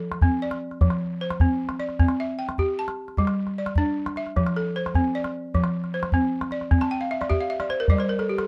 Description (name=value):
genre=west african traditional, West African string and xylophone music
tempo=102 BPM (dotted quarters)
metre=12/8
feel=straight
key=F major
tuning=A4 = 440 Hz
part: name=balafon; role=arpeggios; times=0.0-8.5 s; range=F3 to A5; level=-27 LUFS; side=equal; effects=none
part: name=calabash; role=percussion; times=0.1-8.5 s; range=none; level=-25 LUFS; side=equal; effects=none
room=light reverb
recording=dark, warm production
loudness=-25 LUFS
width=mono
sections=0.0-8.5 A section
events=balafon fill 6.8-8.5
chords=0.0 F; 2.0 C; 3.2 G5; 4.4 F; 6.7 C5; 7.9 G5